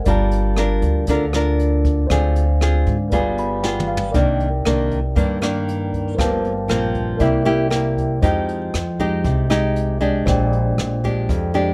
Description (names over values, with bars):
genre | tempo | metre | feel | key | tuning
bossa nova | 118 BPM | 4/4 | straight | G minor, C minor from 4.1 s | A4 = 437 Hz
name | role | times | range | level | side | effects
mellow tine electric piano | accompaniment | 0.0-11.7 s | Eb4 to B5 | -28 LUFS | equal | none
nylon-string guitar | accompaniment | 0.0-11.7 s | F2 to Bb4 | -23 LUFS | equal | none
upright bass | bass | 0.0-11.7 s | G1 to Ab2 | -23 LUFS | equal | none
jazz brush drum kit | drums | 0.1-11.7 s | hi-hat, kick drum, rim click, snare drum, toms | -27 LUFS | equal | none
room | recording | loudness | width
little or no reverb | none | -19 LUFS | mono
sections
0.0-4.1 A section; 4.1-11.7 B section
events
tine electric piano fill 3.1-4.1; drum fill 3.6-4.1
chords
0.1 Gm7; 2.1 Dm7b5; 3.1 G7b9; 4.1 Cm9; 6.2 Gm11; 7.2 C7; 8.2 Fm9; 10.3 Bb13